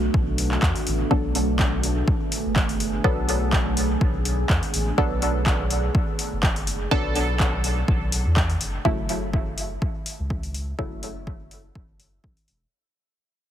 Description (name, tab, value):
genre	dub techno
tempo	124 BPM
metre	4/4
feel	swing 54% on 16ths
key	F# minor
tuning	A4 = 440 Hz
part	deep dark ambient pad	sustained chords	0.0-8.8 s	A3 to G#4	-30 LUFS	right 2 dB	chorus, built-in reverb, sidechain pumping
part	soft dub sub bass	bass	0.0-12.7 s	E1 to E2	-26 LUFS	equal	sidechain pumping
part	electronic kick drum	drums	0.1-12.3 s	none	-24 LUFS	equal	overdrive
part	deep house drum kit	drums	0.4-12.6 s	handclaps, hi-hat	-28 LUFS	equal	overdrive, dub echo
part	filtered dub chord stab	stabs	1.1-11.1 s	C#3 to A4	-28 LUFS	equal	chorus, phaser, sidechain pumping, dub echo
room	light reverb, digital ambience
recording	heavily compressed radio sound, multiband compression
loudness	-21 LUFS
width	side -10 dB against mid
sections	0.0-8.9 A section; 8.9-12.7 B section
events	fade-out 8.9-12.7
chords	0.0 Bm7; 8.9 F#m7